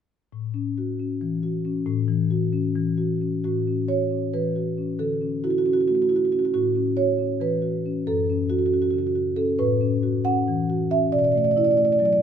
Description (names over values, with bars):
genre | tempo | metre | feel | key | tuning
classical, contemporary piece for solo marimba | 273 BPM (eighths) | 7/8 | rubato | A major | A4 = 440 Hz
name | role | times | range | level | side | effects
marimba with soft mallets | solo | 0.3-12.2 s | F#2 to F#5 | -20 LUFS | equal | none
room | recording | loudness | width
wet stone room reverb, RT60 1.4 s | none | -21 LUFS | side -8 dB against mid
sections
0.3-3.4 A section; 3.4-12.2 B section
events
none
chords
0.3 A6; 5.0 Dmaj9; 6.5 A69; 8.1 F#m; 9.6 A69; 11.1 Bm7